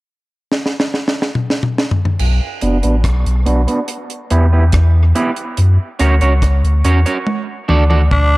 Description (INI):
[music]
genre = dub reggae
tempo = 71 BPM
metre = 4/4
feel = straight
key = B minor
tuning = A4 = 440 Hz
[part]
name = deep reggae drum kit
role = drums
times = 0.5-8.3 s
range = crash cymbal, hi-hat, kick drum, rim click, snare drum, toms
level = -18 LUFS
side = equal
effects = none
[part]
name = warm sub bass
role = bass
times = 2.2-8.4 s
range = F#1 to F#2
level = -12 LUFS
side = equal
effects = none
[part]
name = electric guitar at the edge of break-up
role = accompaniment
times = 2.6-8.0 s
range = B3 to D5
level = -18 LUFS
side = right 2 dB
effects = high-pass filter, low-pass filter, dub echo
[part]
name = growling tenor saxophone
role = melody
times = 8.1-8.4 s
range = D4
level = -14 LUFS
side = equal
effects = dub echo
[sound]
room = small room reverb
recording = echo-heavy mix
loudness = -12 LUFS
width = side -20 dB against mid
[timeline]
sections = 0.0-2.2 A section; 2.2-8.4 B section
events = drum fill 0.5-2.2, 7.3-8.4; filter sweep on clean electric guitar 2.2-8.4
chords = 0.0 N.C.; 2.2 Bm; 3.9 Em; 5.6 F#; 7.3 D